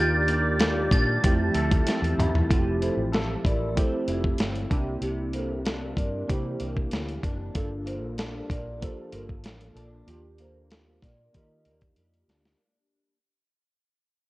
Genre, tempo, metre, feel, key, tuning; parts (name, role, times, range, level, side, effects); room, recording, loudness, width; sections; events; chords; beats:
indie pop, bedroom pop; 95 BPM; 4/4; straight; F major; A4 = 439 Hz
glockenspiel with brass mallets; melody; 0.0-1.2 s; A6; -28 LUFS; right 1 dB; ensemble chorus, analog delay
electric guitar through a small old amp; accompaniment; 0.0-13.2 s; G2 to A4; -34 LUFS; left 2 dB; ensemble chorus, warbly pitch drift
warbly lo-fi synth keys; accompaniment; 0.0-12.6 s; A3 to Bb4; -32 LUFS; right 2 dB; chorus
hollow soft pad; sustained chords; 0.0-2.5 s; G4 to D6; -34 LUFS; equal; chorus
vintage muted fingered electric bass; bass; 0.0-12.5 s; F1 to Eb3; -30 LUFS; equal; transformer saturation
dusty soul sampler-style drum kit; drums; 0.3-12.6 s; hi-hat, kick drum, snare drum, toms; -26 LUFS; equal
vibraphone with soft mallets; second line; 2.8-11.8 s; F4 to Eb5; -36 LUFS; right 1 dB; analog chorus, analog delay
light reverb; worn, warbling old tape, cassette tape, warbly pitch drift; -24 LUFS; side -19 dB against mid
0.0-2.5 A section; 2.5-12.6 B section
glockenspiel solo 0.0-2.5; drum fill 1.9-2.5, 12.0-12.6; fade-out 2.5-12.6
0.0 Ebmaj7; 1.2 Fmaj9; 4.7 C9; 7.5 Gm7; 10.1 Ebmaj7
0.60 1.23 1.86 | 2.50 3.13 3.76 4.39 | 5.02 5.65 6.28 6.92 | 7.55 8.18 8.81 9.44 | 10.08 10.71 11.34 11.97